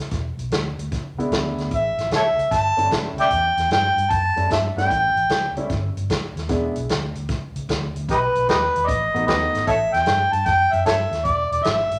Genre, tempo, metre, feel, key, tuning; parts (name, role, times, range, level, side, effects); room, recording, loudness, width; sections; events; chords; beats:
electric blues shuffle; 151 BPM; 4/4; swing 68% on 8ths; A4 = 440 Hz
vintage muted fingered electric bass; bass; 0.0-12.0 s; E1 to G2; -30 LUFS; equal
vintage drum kit; drums; 0.0-12.0 s; hi-hat, kick drum, snare drum; -29 LUFS; equal
warm grand piano; accompaniment; 1.2-6.7, 9.1-9.7 s; G3 to F#4; -30 LUFS; equal
mellow harmonica; melody; 1.7-5.5, 8.1-12.0 s; D#4 to A5; -21 LUFS; equal; overdrive
wet large studio reverb, RT60 0.9 s; -21 LUFS; mono
0.0-12.0 A section
0.1 E7; 1.7 A7; 6.5 E7; 8.1 B7; 9.7 A5; 11.3 E7
| 0.12 0.52 0.92 1.32 | 1.72 2.11 2.51 2.91 | 3.31 3.71 4.11 4.50 | 4.90 5.30 5.70 6.10 | 6.49 6.89 7.29 7.69 | 8.08 8.48 8.88 9.28 | 9.67 10.07 10.47 10.87 | 11.26 11.66